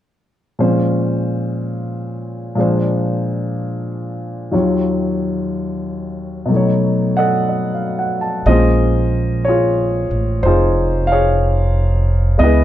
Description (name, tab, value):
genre	jazz ballad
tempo	61 BPM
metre	4/4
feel	swing 67% on 8ths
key	Bb minor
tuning	A4 = 440 Hz
part	warm upright piano	accompaniment	0.6-12.6 s	Eb2 to A5	-16 LUFS	left 1 dB	none
part	upright bass	bass	8.5-12.6 s	F1 to Db2	-15 LUFS	right 1 dB	none
room	little or no reverb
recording	dark, warm production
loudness	-15 LUFS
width	side -12 dB against mid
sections	0.6-8.5 A section; 8.5-12.6 B section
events	none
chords	0.6 Bbm7; 2.6 Bb7; 4.5 Ebm7; 6.5 B9; 8.5 Bbm9